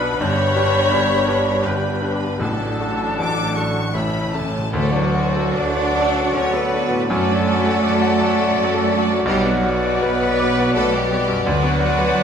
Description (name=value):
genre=classical, romantic movement for piano and orchestra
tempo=68-87 BPM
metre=3/4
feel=rubato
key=D major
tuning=A4 = 438 Hz
part: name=clear baby grand piano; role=melody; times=0.0-12.2 s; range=G1 to D6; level=-23 LUFS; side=left 1 dB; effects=none
part: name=clear studio violin section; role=melody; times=0.0-12.2 s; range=F#4 to D6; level=-27 LUFS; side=left 3 dB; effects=none
part: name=bright concert flute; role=second line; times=0.0-12.2 s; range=F#5 to B5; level=-28 LUFS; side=left 1 dB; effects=none
part: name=mellow clarinet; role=second line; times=0.0-12.2 s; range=F#4 to C#5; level=-29 LUFS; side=left 2 dB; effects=none
part: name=warm oboe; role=second line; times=0.0-12.2 s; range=D5 to G5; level=-30 LUFS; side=right 1 dB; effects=none
part: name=warm studio violin section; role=second line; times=0.0-12.2 s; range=F#4 to D5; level=-27 LUFS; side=left 2 dB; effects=none
part: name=dark bassoon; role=accompaniment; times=0.0-12.2 s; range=F#3 to D4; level=-28 LUFS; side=right 1 dB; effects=none
part: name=rich studio viola section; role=accompaniment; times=0.0-12.2 s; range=C#4 to D5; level=-28 LUFS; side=right 1 dB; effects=none
part: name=rich studio cello section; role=bass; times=0.0-12.2 s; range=G2 to D4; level=-24 LUFS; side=right 3 dB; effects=none
part: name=rich studio double bass section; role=bass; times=0.0-12.2 s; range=G1 to F#2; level=-28 LUFS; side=right 4 dB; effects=none
part: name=mellow French horn section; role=sustained chords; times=0.2-12.2 s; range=E3 to D5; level=-28 LUFS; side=left 5 dB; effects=none
part: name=cymbal swell and tam-tam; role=percussion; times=0.2-7.8 s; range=none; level=-33 LUFS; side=left 1 dB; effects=none
part: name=timpani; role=percussion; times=2.4-4.7, 11.5-12.2 s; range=A2 to D3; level=-33 LUFS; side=left 1 dB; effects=none
room=wet recital hall reverb, RT60 1.4 s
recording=minimal, uncompressed stereo recording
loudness=-16 LUFS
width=side -7 dB against mid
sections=0.0-4.7 A section; 4.7-12.2 B section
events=timpani fill 3.9-4.7; band accent 4.7-5.6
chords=0.2 G; 2.4 D/A; 3.9 A; 4.7 D; 7.1 D/F#; 9.3 Bm; 11.5 Bm/D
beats=| 0.21 0.92 1.65 | 2.42 3.19 3.95 | 4.73 5.58 6.35 | 7.09 7.82 8.55 | 9.27 10.03 10.75 | 11.46 12.15